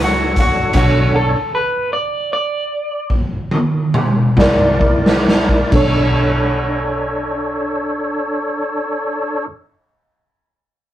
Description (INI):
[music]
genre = slow blues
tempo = 43-54 BPM (dotted quarters)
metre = 12/8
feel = straight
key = B minor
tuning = A4 = 441 Hz
[part]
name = electric guitar through a small old amp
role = melody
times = 0.0-3.1 s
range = F#4 to D5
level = -18 LUFS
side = equal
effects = none
[part]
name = tine electric piano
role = accompaniment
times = 0.0-9.5 s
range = D4 to D5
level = -20 LUFS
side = right 2 dB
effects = medium tremolo
[part]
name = tonewheel organ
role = sustained chords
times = 0.0-9.5 s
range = D4 to D5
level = -21 LUFS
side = left 1 dB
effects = slow rotary speaker, overdrive, chorus vibrato
[part]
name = vintage muted fingered electric bass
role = bass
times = 0.0-9.5 s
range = B1 to C#2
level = -20 LUFS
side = equal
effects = none
[part]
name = raw garage drum kit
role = drums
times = 0.4-5.9 s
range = crash cymbal, hi-hat, kick drum, snare drum, toms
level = -16 LUFS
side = equal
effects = none
[sound]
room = moderate studio reverb, RT60 0.5 s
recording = rough rehearsal-room recording, tube saturation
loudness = -14 LUFS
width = side -12 dB against mid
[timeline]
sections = 0.0-5.7 A section; 5.7-10.9 B section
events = slowing down 0.0-5.7; clean electric guitar solo 0.0-5.7; drum fill 3.1-5.7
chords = 0.0 Bm7; 4.4 C7; 5.7 Bm7